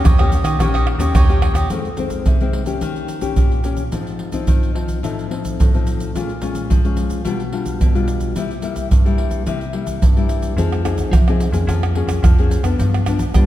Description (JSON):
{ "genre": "samba and choro", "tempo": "108 BPM", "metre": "4/4", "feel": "straight", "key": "F minor", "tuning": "A4 = 440 Hz", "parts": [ { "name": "cavaquinho", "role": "accompaniment", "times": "0.0-1.7 s", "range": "Eb4 to Eb5", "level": "-24 LUFS", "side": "right 4 dB", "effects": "none" }, { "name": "nylon-string guitar", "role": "accompaniment", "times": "0.0-13.5 s", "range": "F2 to Ab4", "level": "-22 LUFS", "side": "left 4 dB", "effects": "none" }, { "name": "metallic FM bass", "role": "bass", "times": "0.0-1.7, 10.6-13.5 s", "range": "Bb1 to G3", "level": "-18 LUFS", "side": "equal", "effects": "none" }, { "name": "tube shaker, surdo, pandeiro and tamborim", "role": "percussion", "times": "0.1-13.5 s", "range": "none", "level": "-17 LUFS", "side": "right 1 dB", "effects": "none" } ], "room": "moderate concert hall reverb, RT60 1.8 s", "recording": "none", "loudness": "-15 LUFS", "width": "side -13 dB against mid", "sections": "0.0-1.7 A section; 1.7-10.6 B section; 10.6-13.5 C section", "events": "none", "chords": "0.0 Eb7; 1.7 Fm7; 2.8 Eb7; 3.9 Ab6; 5.0 F7/A; 6.1 Bbm7; 7.3 G7/B; 8.4 C7; 10.6 Fm7; 11.7 Bbm7/F; 12.8 G7" }